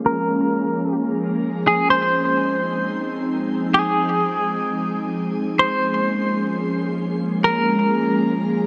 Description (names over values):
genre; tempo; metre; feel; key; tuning
hip hop; free time; none; none; F minor; A4 = 440 Hz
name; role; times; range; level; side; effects
glassy FM pad; sustained chords; 0.0-8.7 s; F3 to Ab4; -24 LUFS; equal; ensemble chorus, built-in reverb
clean electric guitar; melody; 0.1-8.3 s; Ab4 to C5; -23 LUFS; equal; tremolo, tape echo
room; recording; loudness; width
moderate shimmer reverb, RT60 5.7 s; low-pass filter; -21 LUFS; mono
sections
0.0-1.9 A section; 1.9-8.7 B section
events
filter sweep 0.0-1.9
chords
0.0 Bbm7; 1.9 Fm7; 5.6 Bbm7